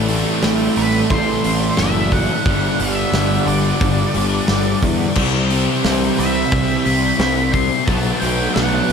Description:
rock, shoegaze and dream pop; 89 BPM; 4/4; straight; C lydian; A4 = 440 Hz
soft additive organ-like pad; sustained chords; 0.0-8.9 s; G3 to A5; -28 LUFS; right 2 dB; ensemble chorus, built-in reverb
electric guitar at the edge of break-up; riff; 0.0-8.9 s; A2 to G4; -24 LUFS; right 12 dB; reverse reverb
sludgy distorted guitar; riff; 0.0-8.9 s; G2 to C4; -24 LUFS; right 1 dB; overdrive
thick fuzz guitar; riff; 0.0-8.9 s; G2 to C4; -22 LUFS; left 11 dB; distortion, ensemble chorus
fuzz picked electric bass; bass; 0.0-8.9 s; F#1 to E2; -21 LUFS; equal; overdrive
big rock drum kit; drums; 0.1-8.9 s; crash cymbal, hi-hat, kick drum, snare drum; -22 LUFS; right 1 dB
octave-fuzz lead guitar; melody; 0.8-8.9 s; B4 to C6; -23 LUFS; equal; distortion, tape echo
small room ambience; -14 LUFS; side -6 dB against mid
0.0-8.9 A section
0.0 Am7; 2.5 Gmaj7; 5.2 Cmaj7; 7.9 Bm7
0.43 1.11 1.78 | 2.46 3.14 3.82 4.50 | 5.17 5.85 6.53 7.20 | 7.88 8.56

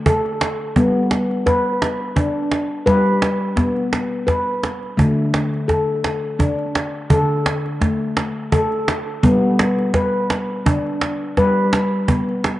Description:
world meditative, meditative tuned percussion; 85 BPM; 3/4; swing 55% on 16ths; A4 = 439 Hz
handpan; arpeggios; 0.0-12.6 s; D3 to B4; -18 LUFS; left 1 dB; analog delay
cajon; percussion; 0.1-12.6 s; -20 LUFS; right 2 dB
wet spring reverb, RT60 2.3 s; home recording on cassette, nothing above 10.6 kHz; -16 LUFS; side -15 dB against mid
0.0-12.6 A section
0.0 D5; 0.8 G; 5.0 D5; 9.2 G
0.06 | 0.76 1.46 2.16 | 2.87 3.57 4.27 | 4.98 5.69 6.39 | 7.10 7.81 8.52 | 9.24 9.95 10.66 | 11.37 12.08

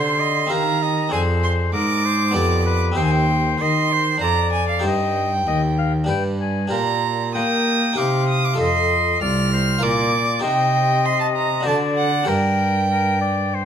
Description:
classical, baroque-style sonata movement with continuo; 97 BPM; 3/4; straight; C minor, G minor from 6.7 s; A4 = 440 Hz
clear oboe; melody; 0.0-13.7 s; Bb4 to Ab5; -24 LUFS; left 9 dB
rich violin; second line; 0.0-13.7 s; F5 to F6; -21 LUFS; right 4 dB
harpsichord; accompaniment; 0.0-13.7 s; C2 to Eb5; -24 LUFS; left 1 dB
rich cello; bass; 0.0-13.7 s; C2 to Bb3; -22 LUFS; right 1 dB
moderate large studio reverb, RT60 1.1 s; -17 LUFS; side -8 dB against mid
0.0-13.7 A section
0.0 Cm; 0.5 Cm/Eb; 1.1 Dm7b5/F; 2.4 G7/F; 3.0 Cm/Eb; 4.2 Fm6; 4.8 Cm/G; 6.1 G; 6.7 Gm/Bb; 8.0 Cm; 8.6 F7; 9.8 Bb; 10.4 Cm; 11.7 D7; 12.3 Gm
0.51 | 1.13 1.74 2.36 | 2.97 3.60 4.21 | 4.84 5.46 6.09 | 6.72 7.35 7.97 | 8.59 9.22 9.84 | 10.44 11.05 11.67 | 12.29 12.92 13.55

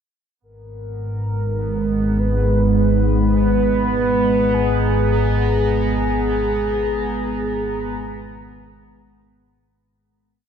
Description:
dark ambient drone; 51 BPM; 4/4; straight; G# minor; A4 = 440 Hz
mellow horn-like synth lead; melody; 0.4-9.2 s; G#4 to B4; -23 LUFS; left 1 dB; wide subtle chorus, ping-pong delay
deep dark ambient pad; sustained chords; 2.3-9.8 s; G#3 to A#5; -25 LUFS; right 1 dB; chorus, built-in reverb
analog drone; drone; 0.8-9.9 s; G#1 to G#2; -20 LUFS; equal; chorus
bubbling stepped-filter texture; texture; 0.4-9.8 s; B3; -28 LUFS; right 7 dB; chorus, built-in reverb
moderate huge ambient reverb, RT60 8.0 s; -16 LUFS; side -8 dB against mid
0.4-9.8 A section
fade-in on ambient pad 0.4-9.8; fade-in on synth texture 0.4-9.8; fade-in on soft synth lead 0.4-9.8; fade-out 5.1-9.8
0.4 G#madd9
| 0.41 1.58 2.76 3.94 | 5.11 6.29 7.47 8.64

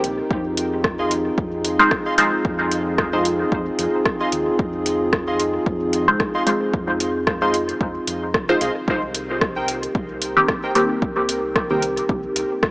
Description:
dub techno; 112 BPM; 4/4; swing 56% on 16ths; C minor; A4 = 440 Hz
dark analog pad; sustained chords; 0.0-12.7 s; C4 to Bb4; -23 LUFS; equal; chorus, sidechain pumping
filtered dub chord stab; stabs; 0.0-11.8 s; Eb3 to C5; -20 LUFS; equal; phaser, sidechain pumping, dub echo
round analog bass; bass; 0.0-12.4 s; G1 to F2; -33 LUFS; equal; tube saturation, sidechain pumping
soft vintage rhythm box; drums; 0.0-12.7 s; hi-hat, rim click; -23 LUFS; equal; overdrive
electronic kick drum; drums; 0.3-12.7 s; -24 LUFS; equal
warbly lo-fi synth keys; riff; 1.0-11.8 s; Eb4 to C6; -28 LUFS; equal; chorus, sidechain pumping, dub echo
light reverb, digital ambience; dry, gritty hardware recording, cassette tape, small speaker sound; -18 LUFS; side -24 dB against mid
0.0-8.9 A section; 8.9-12.7 A section
0.3 Fm7; 8.9 Cm7
| 0.31 0.84 1.38 1.91 | 2.45 2.98 3.52 4.06 | 4.59 5.13 5.66 6.20 | 6.74 7.27 7.81 8.34 | 8.88 9.41 9.95 10.48 | 11.02 11.56 12.09 12.63

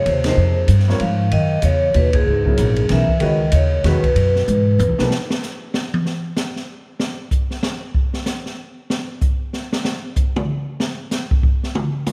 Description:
modal jazz; 190 BPM; 3/4; swing 61% on 8ths; A4 = 440 Hz
vibraphone with medium hard mallets; melody; 0.0-5.0 s; Ab4 to F5; -23 LUFS; equal; tape echo
breathy bass clarinet; second line; 0.0-4.9 s; Ab2 to F3; -26 LUFS; equal
upright bass; bass; 0.0-5.1 s; Bb1 to Ab2; -20 LUFS; equal
open jazz drum kit; drums; 0.1-12.1 s; hi-hat, kick drum, ride cymbal, snare drum, toms; -24 LUFS; equal
warm baby grand piano; accompaniment; 0.2-5.1 s; Db3 to Eb5; -27 LUFS; equal; analog chorus
moderate lush hall reverb, RT60 2.0 s, studio ambience; dreamy mix soaked in reverb; -19 LUFS; mono
0.0-5.1 A section; 5.1-12.1 B section
band accent 0.2, 2.1; drum fill 4.5-5.1; drum solo 5.1-12.1
0.0 Bb9sus4; 1.3 Gb9sus4; 5.1 N.C.
0.05 | 0.37 0.69 1.00 | 1.32 1.63 1.95 | 2.27 2.58 2.90 | 3.21 3.53 3.85 | 4.16 4.48 4.79 | 5.11 5.42 5.74 | 6.06 6.37 6.69 | 7.00 7.32 7.64 | 7.95 8.27 8.59 | 8.90 9.22 9.54 | 9.85 10.17 10.48 | 10.80 11.12 11.43 | 11.75 12.06

